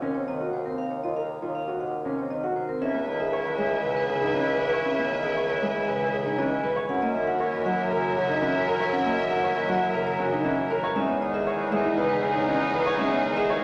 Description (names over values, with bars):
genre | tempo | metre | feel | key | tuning
classical, minimalist pattern music | 118 BPM | 4/4 | straight | C# dorian | A4 = 436 Hz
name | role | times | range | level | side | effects
vibraphone with hard mallets | melody | 0.0-13.6 s | G#4 to A#5 | -32 LUFS | equal | none
Celtic harp | accompaniment | 0.0-13.6 s | C3 to B3 | -34 LUFS | equal | none
dark baby grand piano | arpeggios | 0.0-13.6 s | C4 to C#5 | -32 LUFS | equal | none
clear bassoon | bass | 0.0-13.6 s | C#2 to F#2 | -33 LUFS | equal | none
clear oboe | second line | 2.8-13.6 s | D#4 to E4 | -36 LUFS | equal | none
rich studio violin section | sustained chords | 2.8-13.6 s | D#4 to E5 | -35 LUFS | equal | none
room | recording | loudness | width
wet scoring stage reverb, RT60 1.6 s | none | -26 LUFS | mono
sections
0.0-2.8 A section; 2.8-13.6 B section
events
none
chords
0.0 Ebm7; 2.8 C#m7; 6.9 F#7; 11.0 Emaj7